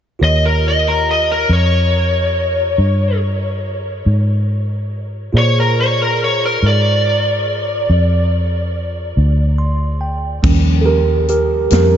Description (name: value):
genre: slow blues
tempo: 47 BPM (dotted quarters)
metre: 12/8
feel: straight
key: Eb mixolydian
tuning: A4 = 440 Hz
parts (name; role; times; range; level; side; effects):
- lead guitar through a small cranked amp; melody; 0.2-8.3 s; Bb4 to Eb5; -17 LUFS; left 1 dB; overdrive
- bell-like tine electric piano; accompaniment; 0.2-12.0 s; F3 to C6; -21 LUFS; right 3 dB; phaser
- vintage muted fingered electric bass; bass; 0.2-12.0 s; D2 to Bb2; -16 LUFS; equal; none
- natural country drum kit; drums; 10.4-11.9 s; crash cymbal, hi-hat, kick drum, snare drum; -18 LUFS; left 1 dB; none
room: moderate huge ambient reverb, RT60 7.3 s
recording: dreamy mix soaked in reverb, nothing above 7.7 kHz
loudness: -13 LUFS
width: side -9 dB against mid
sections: 0.2-10.4 A section; 10.4-12.0 B section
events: tine electric piano fill 9.2-10.4; tine electric piano solo 10.4-12.0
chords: 0.2 Eb7; 5.3 Bb7; 10.4 Eb7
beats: | 0.21 1.49 2.77 4.05 | 5.33 6.61 7.89 9.16 | 10.44 11.71